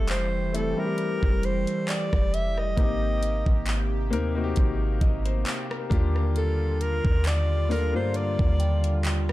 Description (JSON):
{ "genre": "contemporary R&B", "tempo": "67 BPM", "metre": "4/4", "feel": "swing 54% on 16ths", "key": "unclear", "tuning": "A4 = 440 Hz", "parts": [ { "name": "breathy alto saxophone", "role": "melody", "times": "0.0-9.1 s", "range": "A4 to E5", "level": "-30 LUFS", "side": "equal", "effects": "digital delay" }, { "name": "warm grand piano", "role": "accompaniment", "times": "0.0-9.3 s", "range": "G3 to Eb5", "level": "-32 LUFS", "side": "left 5 dB", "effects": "none" }, { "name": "chorused pulse-width pad", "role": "sustained chords", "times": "0.0-9.3 s", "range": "C3 to G4", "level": "-33 LUFS", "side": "right 1 dB", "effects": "none" }, { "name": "clean 808-style bass", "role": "bass", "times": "0.0-9.3 s", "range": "F1 to G2", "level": "-26 LUFS", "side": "equal", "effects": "none" }, { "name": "soft synth bell", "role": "texture", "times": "0.0-1.1, 7.7-9.3 s", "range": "D5 to G5", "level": "-42 LUFS", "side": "right 2 dB", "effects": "none" }, { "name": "smooth R&B drum kit", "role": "drums", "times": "0.1-9.3 s", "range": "handclaps, hi-hat, kick drum, rim click", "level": "-26 LUFS", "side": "equal", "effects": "none" } ], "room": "little or no reverb", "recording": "dark, warm production", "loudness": "-22 LUFS", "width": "side -16 dB against mid", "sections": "0.0-9.3 A section", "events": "none", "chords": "0.0 Fmaj9; 2.8 Abmaj9; 5.9 Ebmaj9" }